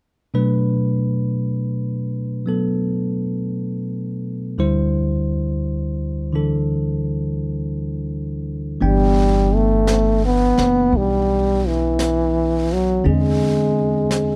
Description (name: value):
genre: jazz ballad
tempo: 57 BPM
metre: 4/4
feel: swing 67% on 8ths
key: G major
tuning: A4 = 440 Hz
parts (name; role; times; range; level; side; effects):
- barky tine electric piano; accompaniment; 0.3-14.4 s; D2 to G5; -23 LUFS; equal; none
- warm trombone; melody; 8.8-14.4 s; E3 to B3; -20 LUFS; equal; none
- upright bass; bass; 8.8-14.4 s; F#1 to E2; -24 LUFS; equal; none
- jazz brush drum kit; drums; 8.8-14.4 s; brushed snare drum, hi-hat, snare drum; -33 LUFS; equal; none
room: little or no reverb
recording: dry, close 1970s-style studio recording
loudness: -20 LUFS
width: mono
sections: 0.4-8.8 A section; 8.8-14.4 B section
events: none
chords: 0.4 Bm7; 4.6 D7sus4; 8.8 G6; 13.0 E7b13